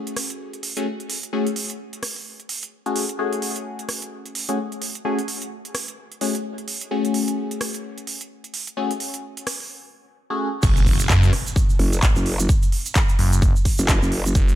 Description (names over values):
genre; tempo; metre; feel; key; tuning
bass house; 129 BPM; 4/4; swing 59% on 16ths; F# minor; A4 = 437 Hz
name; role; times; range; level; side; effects
band-passed chord stab; stabs; 0.0-10.5 s; A3 to G#4; -26 LUFS; left 3 dB; phaser, sidechain pumping, dub echo
big-room dance drum kit; drums; 0.1-14.6 s; crash cymbal, handclaps, hi-hat, rim click; -27 LUFS; right 2 dB; none
phased detuned saw bass; bass; 10.6-14.6 s; F#1 to F#2; -18 LUFS; equal; phaser, tube saturation, sidechain pumping
electronic kick drum; drums; 10.6-14.5 s; none; -18 LUFS; equal; none
tube shaker; percussion; 10.6-14.6 s; none; -30 LUFS; right 5 dB; none
impact; sound effects; 10.6-12.5 s; none; -28 LUFS; equal; none
growl bass; bass; 11.8-14.3 s; F#1; -20 LUFS; equal; chorus, overdrive, sidechain pumping
room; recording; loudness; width
light reverb, digital ambience; none; -20 LUFS; side -13 dB against mid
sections
0.0-10.6 A section; 10.6-14.6 B section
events
drop 10.6-14.6; impact 10.6-12.5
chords
0.0 F#madd9; 10.6 N.C.